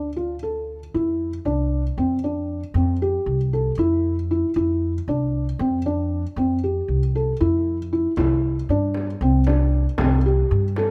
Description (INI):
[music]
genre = contemporary instrumental, chamber music in an uneven meter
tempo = 232 BPM (eighths)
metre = 7/8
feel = straight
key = unclear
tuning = A4 = 440 Hz
[part]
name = felt-muted upright piano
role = arpeggios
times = 0.0-10.9 s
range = C4 to A4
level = -25 LUFS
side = equal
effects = none
[part]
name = upright bass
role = bass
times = 0.0-10.9 s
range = C2 to G2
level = -25 LUFS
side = equal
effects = none
[part]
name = frame drum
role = percussion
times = 8.2-10.9 s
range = none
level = -31 LUFS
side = equal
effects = none
[sound]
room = little or no reverb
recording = close, detailed microphones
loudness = -22 LUFS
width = mono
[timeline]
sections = 0.9-10.9 A section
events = none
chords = 0.0 Dm; 0.9 Fmaj7(no3); 8.2 C